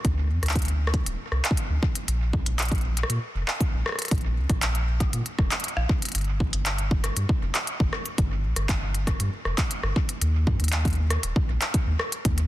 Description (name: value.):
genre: IDM.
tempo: 118 BPM.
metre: 4/4.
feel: straight.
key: unclear.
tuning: A4 = 439 Hz.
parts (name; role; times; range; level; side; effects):
warm sub bass; bass; 0.0-12.5 s; D1 to Bb2; -25 LUFS; equal; tube saturation.
electronic kick drum; drums; 0.0-12.4 s; none; -26 LUFS; equal; none.
industrial drum kit; drums; 0.0-12.5 s; handclaps, hi-hat, rim click; -29 LUFS; equal; soft clipping on snare, ping-pong delay.
room: little or no reverb.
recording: dense, heavily limited modern master.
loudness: -23 LUFS.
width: side -15 dB against mid.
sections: 0.0-12.5 A section.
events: none.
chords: none.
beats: | 0.05 0.56 1.06 1.57 | 2.08 2.59 3.10 3.61 | 4.11 4.62 5.13 5.64 | 6.15 6.66 7.17 7.67 | 8.18 8.69 9.20 9.71 | 10.22 10.72 11.23 11.74 | 12.25.